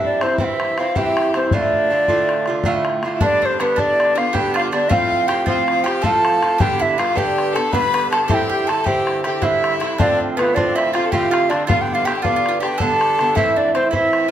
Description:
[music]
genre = celtic folk, Celtic slip jig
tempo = 106 BPM (dotted quarters)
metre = 9/8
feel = straight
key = unclear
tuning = A4 = 439 Hz
[part]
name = bright wooden flute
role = melody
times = 0.0-14.3 s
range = B4 to B5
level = -19 LUFS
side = equal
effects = plate reverb
[part]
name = clear fiddle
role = second line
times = 0.0-14.3 s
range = B3 to B4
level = -26 LUFS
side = left 6 dB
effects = none
[part]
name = Irish bouzouki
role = accompaniment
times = 0.0-14.3 s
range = G2 to F4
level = -21 LUFS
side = right 3 dB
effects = none
[part]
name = bodhran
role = percussion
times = 0.0-14.2 s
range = none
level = -24 LUFS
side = left 2 dB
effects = none
[part]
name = bowl-back mandolin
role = second line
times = 3.2-14.3 s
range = B3 to B4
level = -26 LUFS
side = right 3 dB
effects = none
[sound]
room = moderate studio reverb, RT60 0.8 s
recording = none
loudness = -15 LUFS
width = side -10 dB against mid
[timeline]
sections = 0.0-3.2 A section; 3.2-14.3 A section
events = none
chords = 0.0 C; 1.5 Dm; 3.2 G; 4.9 F; 6.6 G; 8.3 Cadd9; 10.0 F6; 11.7 G; 13.4 Am

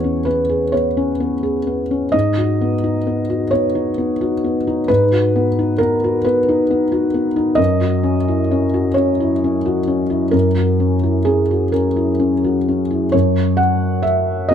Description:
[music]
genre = neoclassical minimalist piano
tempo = 44 BPM (dotted quarters)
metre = 6/8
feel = rubato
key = unclear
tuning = A4 = 439 Hz
[part]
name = felt-muted upright piano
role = solo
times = 0.0-14.5 s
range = E2 to F#5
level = -15 LUFS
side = equal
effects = none
[sound]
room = light reverb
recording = close, detailed microphones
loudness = -15 LUFS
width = side -8 dB against mid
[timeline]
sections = 0.0-13.1 A section; 13.1-14.5 B section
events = none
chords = 0.0 C#m7/E; 2.1 G#m7; 7.6 F#7; 13.1 F#5

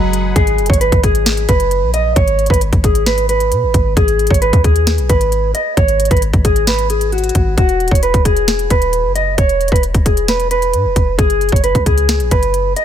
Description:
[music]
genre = hip hop, trap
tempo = 133 BPM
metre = 4/4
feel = half-time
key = G# minor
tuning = A4 = 440 Hz
[part]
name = mellow electric guitar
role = melody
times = 0.0-12.8 s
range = F#3 to D#5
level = -15 LUFS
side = right 1 dB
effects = none
[part]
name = Celtic harp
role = accompaniment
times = 0.0-1.0 s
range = F#3 to D#5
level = -31 LUFS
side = right 3 dB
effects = none
[part]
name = warm 808-style bass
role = bass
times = 0.0-12.7 s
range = D#1 to B2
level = -17 LUFS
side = equal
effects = none
[part]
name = trap drum kit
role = drums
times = 0.1-12.8 s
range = hi-hat, kick drum, snare drum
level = -15 LUFS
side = equal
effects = none
[sound]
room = digital ambience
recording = none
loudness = -11 LUFS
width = side -10 dB against mid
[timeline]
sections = 0.4-12.8 A section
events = none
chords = 0.4 G#m7; 7.6 E5; 11.2 F#sus2

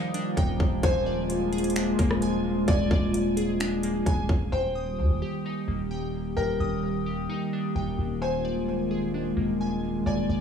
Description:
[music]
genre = hip hop, atmospheric cloud-rap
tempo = 130 BPM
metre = 4/4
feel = half-time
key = Eb major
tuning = A4 = 441 Hz
[part]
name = warbly tape-like pad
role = sustained chords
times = 0.0-10.4 s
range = Eb3 to G4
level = -27 LUFS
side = left 1 dB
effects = chorus, built-in reverb, sidechain pumping
[part]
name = glassy digital keys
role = arpeggios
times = 0.0-10.4 s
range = Bb3 to Eb6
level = -36 LUFS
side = equal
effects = chorus, tape echo
[part]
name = trap drum kit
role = drums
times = 0.1-4.4 s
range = finger snaps, hi-hat, kick drum, rim click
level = -26 LUFS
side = equal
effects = none
[part]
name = long sustained 808-style bass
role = bass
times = 0.4-10.4 s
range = Eb1 to Eb2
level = -31 LUFS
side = equal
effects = none
[part]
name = felt-muted upright piano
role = melody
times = 0.8-10.4 s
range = Bb4 to D5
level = -33 LUFS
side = left 2 dB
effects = tape echo
[sound]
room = digital ambience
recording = dry, gritty hardware recording, small room ambience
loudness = -24 LUFS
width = side -7 dB against mid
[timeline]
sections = 0.0-4.5 A section; 4.5-10.4 B section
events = none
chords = 0.0 Ebmaj7; 0.8 Bb7/Eb; 4.5 Ebmaj7; 8.2 Bb7/Eb

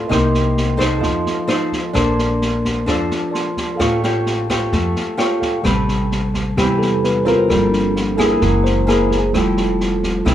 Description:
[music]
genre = bossa nova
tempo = 130 BPM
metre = 4/4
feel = straight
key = A minor from 5.6 s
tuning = A4 = 439 Hz
[part]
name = nylon-string guitar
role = accompaniment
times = 0.0-10.3 s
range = C3 to C#5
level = -18 LUFS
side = left 1 dB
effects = none
[part]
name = tine electric piano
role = accompaniment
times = 0.0-10.3 s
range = C3 to C#6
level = -21 LUFS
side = right 2 dB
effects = medium stereo tremolo
[part]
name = upright bass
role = bass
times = 0.1-10.3 s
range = F1 to F2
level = -22 LUFS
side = equal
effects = none
[part]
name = open jazz drum kit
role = drums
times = 0.1-10.3 s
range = kick drum, rim click, snare drum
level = -24 LUFS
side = equal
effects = none
[sound]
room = moderate studio ambience, RT60 0.5 s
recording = band playing live in one room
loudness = -15 LUFS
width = side -11 dB against mid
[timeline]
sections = 0.0-5.6 A section; 5.6-10.3 B section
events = tine electric piano solo 5.6-10.3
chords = 0.1 Cm7; 1.0 F7; 2.0 Bbmaj9; 3.8 Aaug7; 5.6 Am9; 7.5 Gm11; 8.4 F#9; 9.3 Fmaj9

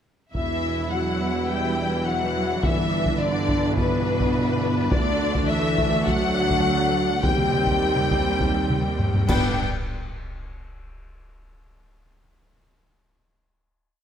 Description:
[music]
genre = cinematic, epic orchestral film score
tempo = 104 BPM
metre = 4/4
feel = straight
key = G major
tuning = A4 = 440 Hz
[part]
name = warm symphonic violin section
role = melody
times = 0.3-9.6 s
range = B4 to G5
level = -28 LUFS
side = left 4 dB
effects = none
[part]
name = warm symphonic violin section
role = second line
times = 0.3-9.6 s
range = B4 to G5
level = -30 LUFS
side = left 4 dB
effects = none
[part]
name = clear symphonic viola section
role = accompaniment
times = 0.3-9.6 s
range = E3 to E4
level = -31 LUFS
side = left 1 dB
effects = none
[part]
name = bright trombone section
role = sustained chords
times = 0.3-9.5 s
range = B2 to C4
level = -32 LUFS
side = right 4 dB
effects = none
[part]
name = mellow French horn section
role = sustained chords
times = 0.3-9.5 s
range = B3 to G4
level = -29 LUFS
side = left 4 dB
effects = none
[part]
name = dark symphonic cello section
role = bass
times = 0.3-9.6 s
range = B2 to G3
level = -29 LUFS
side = right 2 dB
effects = none
[part]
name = mellow tuba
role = bass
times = 0.3-9.6 s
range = E1 to Eb2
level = -31 LUFS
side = right 5 dB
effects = none
[part]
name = rich symphonic double bass section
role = bass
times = 0.3-9.6 s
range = D2 to G2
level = -30 LUFS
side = right 3 dB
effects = none
[part]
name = solo taiko drums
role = drums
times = 0.3-10.4 s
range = none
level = -26 LUFS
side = equal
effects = none
[part]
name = cymbal swell, clash cymbals and concert bass drum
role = percussion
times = 7.2-10.4 s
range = none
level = -33 LUFS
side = equal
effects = none
[sound]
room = moderate scoring stage reverb, RT60 1.8 s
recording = none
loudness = -20 LUFS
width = side -8 dB against mid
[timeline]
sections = 0.3-9.6 theme; 9.6-12.0 final hit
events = drum fill 9.0-9.6; band accent 9.6-10.2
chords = 0.3 Em; 2.6 G; 4.9 D; 7.2 Cm/Eb; 9.3 G; 9.6 N.C.

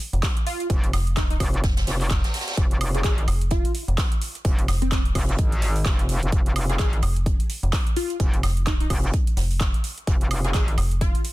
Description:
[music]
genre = bass house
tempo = 128 BPM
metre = 4/4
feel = swing 58% on 16ths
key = F minor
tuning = A4 = 439 Hz
[part]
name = big-room dance drum kit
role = drums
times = 0.0-11.3 s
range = handclaps, hi-hat, woodblock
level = -31 LUFS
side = right 2 dB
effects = overdrive, studio reverb
[part]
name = metallic FM bass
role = bass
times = 0.1-11.1 s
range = F1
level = -23 LUFS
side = equal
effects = tube saturation, sidechain pumping
[part]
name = electronic kick drum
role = drums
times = 0.2-11.1 s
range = none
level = -22 LUFS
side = equal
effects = overdrive, studio reverb
[part]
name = jazz brush drum kit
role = drums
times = 0.2-11.3 s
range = hi-hat, snare drum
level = -36 LUFS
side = right 2 dB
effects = high-pass filter on hats, studio reverb, soft clipping on snare, high-pass filter on snare, high-pass filter on room
[part]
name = plucky unison lead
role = melody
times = 0.5-11.2 s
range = C4 to Ab4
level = -31 LUFS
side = left 1 dB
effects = phaser, analog chorus, ping-pong delay
[part]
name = metallic wobble bass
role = bass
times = 0.7-10.8 s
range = F1 to Ab1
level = -24 LUFS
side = equal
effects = chorus, overdrive, sidechain pumping
[part]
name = reverse cymbal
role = sound effects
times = 1.9-2.6 s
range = none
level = -36 LUFS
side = equal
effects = none
[sound]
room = digital ambience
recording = dense, heavily limited modern master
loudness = -20 LUFS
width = side -18 dB against mid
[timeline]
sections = 0.0-11.3 A section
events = reverse cymbal 1.9-2.6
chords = none

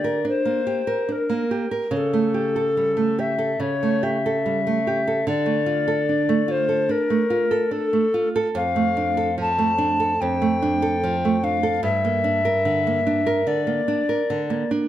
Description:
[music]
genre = romantic duo for recorder and classical guitar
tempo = 73 BPM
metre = 4/4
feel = rubato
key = D minor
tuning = A4 = 443 Hz
[part]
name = mellow hollow tenor recorder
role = melody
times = 0.0-14.7 s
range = A4 to A5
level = -22 LUFS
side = left 4 dB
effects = none
[part]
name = nylon-string guitar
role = accompaniment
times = 0.0-14.9 s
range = F2 to Bb4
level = -22 LUFS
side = right 3 dB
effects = none
[sound]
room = moderate recital hall reverb, RT60 1.8 s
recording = close, detailed microphones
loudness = -19 LUFS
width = side -12 dB against mid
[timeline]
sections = 0.0-14.9 A section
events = none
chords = 0.0 Gm/D; 2.0 A7/C#; 5.3 Dm; 8.6 Dm/F; 11.9 Gm

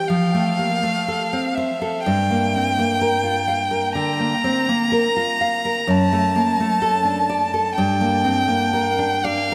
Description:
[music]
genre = romantic duo for violin and classical guitar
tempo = 62 BPM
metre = 4/4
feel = rubato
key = unclear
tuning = A4 = 440 Hz
[part]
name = rich violin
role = melody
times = 0.0-9.5 s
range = E5 to Bb5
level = -23 LUFS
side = equal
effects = analog delay
[part]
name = nylon-string guitar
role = accompaniment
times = 0.0-9.5 s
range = F#2 to F5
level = -23 LUFS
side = equal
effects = none
[sound]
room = wet huge ambient reverb, RT60 6.5 s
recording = dreamy mix soaked in reverb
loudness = -20 LUFS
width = mono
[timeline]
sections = 0.0-9.5 A section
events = none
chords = 0.1 F; 2.0 Gm7; 5.9 D/F#; 7.8 Gm

